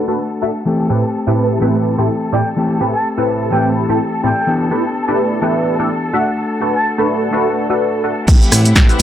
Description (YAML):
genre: filtered disco house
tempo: 126 BPM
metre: 4/4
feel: swing 56% on 16ths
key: A dorian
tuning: A4 = 441 Hz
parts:
  - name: funky polysynth comp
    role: accompaniment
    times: 0.0-9.0 s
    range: A2 to E5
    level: -17 LUFS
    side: right 1 dB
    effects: chorus, phaser, sidechain pumping, low-pass filter
  - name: clear studio string section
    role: sustained chords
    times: 0.0-9.0 s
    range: E4 to A5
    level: -25 LUFS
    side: left 1 dB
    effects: sidechain pumping, low-pass filter
  - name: mellow electric guitar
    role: riff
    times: 0.0-9.0 s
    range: E3 to G4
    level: -19 LUFS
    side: left 2 dB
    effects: sidechain pumping, low-pass filter
  - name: bright reedy silver concert flute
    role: melody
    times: 2.3-6.9 s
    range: F#5 to A5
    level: -20 LUFS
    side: equal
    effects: sidechain pumping, low-pass filter, digital delay
  - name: modern bright fingered electric bass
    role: bass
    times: 8.3-9.0 s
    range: A1 to A2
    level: -14 LUFS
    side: equal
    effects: tube saturation, sidechain pumping, low-pass filter
  - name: electronic kick drum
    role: drums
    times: 8.3-8.9 s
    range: none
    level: -10 LUFS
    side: equal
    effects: none
  - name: punchy analog drum machine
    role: drums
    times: 8.3-9.0 s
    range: crash cymbal, hi-hat, rim click, shaker, snare drum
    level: -15 LUFS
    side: right 1 dB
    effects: sidechain pumping on hats, sidechain pumping on cymbals, sidechain pumping on perc
room: light reverb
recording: none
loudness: -13 LUFS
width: side -10 dB against mid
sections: 0.0-8.3 A section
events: filter sweep 0.0-8.3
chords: 0.0 Bm7/A; 0.7 Am7; 4.5 G69; 6.1 Bm7/A; 8.3 Am7